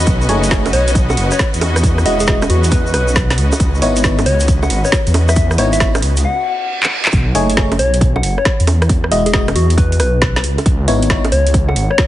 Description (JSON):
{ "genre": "UK garage, two-step garage", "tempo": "136 BPM", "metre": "4/4", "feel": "swing 66% on 16ths", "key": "C# minor", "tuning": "A4 = 440 Hz", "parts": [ { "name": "dark detuned saw bass", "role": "bass", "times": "0.0-11.9 s", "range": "E1 to E2", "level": "-15 LUFS", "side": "equal", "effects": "none" }, { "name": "tube shaker", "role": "percussion", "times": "0.0-6.2 s", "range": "none", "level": "-27 LUFS", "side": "right 2 dB", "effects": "none" }, { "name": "clear studio string section", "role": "texture", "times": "0.0-6.2 s", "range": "C#4 to D#5", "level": "-23 LUFS", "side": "left 1 dB", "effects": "sidechain pumping" }, { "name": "electronic kick drum", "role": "drums", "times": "0.1-12.1 s", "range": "none", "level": "-16 LUFS", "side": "equal", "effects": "none" }, { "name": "garage drum kit", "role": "drums", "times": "0.1-12.1 s", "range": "bongos, handclaps, hi-hat, rim click, snare drum", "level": "-19 LUFS", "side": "right 1 dB", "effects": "overdrive" }, { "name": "FM electric piano", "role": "stabs", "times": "0.3-11.2 s", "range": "G#3 to D#5", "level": "-19 LUFS", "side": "left 1 dB", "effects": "chorus, phaser" }, { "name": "soft struck synth lead", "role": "melody", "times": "0.7-12.0 s", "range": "F#4 to F#5", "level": "-20 LUFS", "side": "left 2 dB", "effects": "chorus, dub echo" }, { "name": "reverse cymbal", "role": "sound effects", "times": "6.4-7.1 s", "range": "none", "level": "-26 LUFS", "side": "right 5 dB", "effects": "none" } ], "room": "light reverb, digital ambience", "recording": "heavily compressed radio sound, multiband compression, nothing above 10.9 kHz", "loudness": "-12 LUFS", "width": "side -14 dB against mid", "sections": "0.0-7.1 A section; 7.1-12.1 A section", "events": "break 6.2-7.1; reverse cymbal 6.4-7.1; drum fill 6.8-7.1", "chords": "0.1 B13; 1.6 Emaj9; 3.4 C#m9; 7.1 B13; 8.7 Emaj9; 10.4 C#m9", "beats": "| 0.07 0.51 0.95 1.39 | 1.83 2.28 2.72 3.16 | 3.60 4.04 4.48 4.92 | 5.36 5.80 6.25 6.69 | 7.13 7.57 8.01 8.45 | 8.89 9.34 9.78 10.22 | 10.66 11.10 11.54 11.98" }